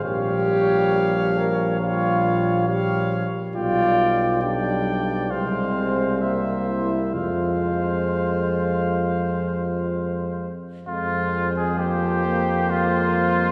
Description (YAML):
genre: classical, brass quintet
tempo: 64-69 BPM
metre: 4/4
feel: rubato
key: F minor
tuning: A4 = 440 Hz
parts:
  - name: clear trumpet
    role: melody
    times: 0.0-13.5 s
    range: C5 to G5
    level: -33 LUFS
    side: equal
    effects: none
  - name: warm trumpet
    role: second line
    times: 0.0-13.5 s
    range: F4 to D5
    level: -30 LUFS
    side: equal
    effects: none
  - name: clear trombone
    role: accompaniment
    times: 0.0-13.5 s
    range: F3 to Bb3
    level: -32 LUFS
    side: equal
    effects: none
  - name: mellow French horn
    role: accompaniment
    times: 0.0-13.5 s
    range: G3 to Bb4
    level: -27 LUFS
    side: equal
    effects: none
  - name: clear tuba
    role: bass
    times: 0.0-13.5 s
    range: Bb1 to F2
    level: -27 LUFS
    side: equal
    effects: none
room: wet church reverb, RT60 2.7 s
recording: heard from further back in the room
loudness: -22 LUFS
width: mono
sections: 0.0-10.9 A section; 10.9-13.5 B section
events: none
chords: 0.0 Gm7b5/Bb; 3.6 G7/B; 5.3 Fm/C; 6.2 C7; 7.1 Fm